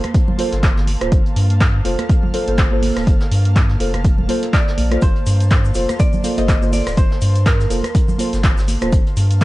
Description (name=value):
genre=deep house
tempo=123 BPM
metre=4/4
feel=swing 57% on 16ths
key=G minor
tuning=A4 = 441 Hz
part: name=vintage hollow-body jazz guitar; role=melody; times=0.0-0.8, 4.5-8.4 s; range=Bb4 to Eb5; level=-27 LUFS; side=right 1 dB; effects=tape echo
part: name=airy breathy pad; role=sustained chords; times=0.0-9.4 s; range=Bb3 to F6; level=-30 LUFS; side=right 2 dB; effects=chorus, sidechain pumping
part: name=punchy analog drum machine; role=drums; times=0.0-9.4 s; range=handclaps, hi-hat, rim click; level=-26 LUFS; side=equal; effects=none
part: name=congas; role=percussion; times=0.0-8.8 s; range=none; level=-28 LUFS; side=right 2 dB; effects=sidechain pumping on perc
part: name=electronic kick drum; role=drums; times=0.1-9.4 s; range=none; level=-15 LUFS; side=equal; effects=overdrive
part: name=vintage brush drum kit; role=drums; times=0.1-9.4 s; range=hi-hat, snare drum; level=-34 LUFS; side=equal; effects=high-pass filter on hats, high-pass filter on snare, high-pass filter on room
part: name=deep mellow chord stab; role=stabs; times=0.4-9.0 s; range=Bb3 to C5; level=-23 LUFS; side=right 1 dB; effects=chorus, sidechain pumping, tape echo
part: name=round analog bass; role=bass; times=0.5-9.4 s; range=D1 to G2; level=-18 LUFS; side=equal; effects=tube saturation, sidechain pumping
part: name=tube shaker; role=percussion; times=5.0-9.4 s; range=none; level=-37 LUFS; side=left 4 dB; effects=none
room=small room ambience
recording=dark, warm production, vinyl crackle, nothing above 10.9 kHz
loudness=-14 LUFS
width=side -18 dB against mid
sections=0.0-9.4 A section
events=none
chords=0.0 Gm11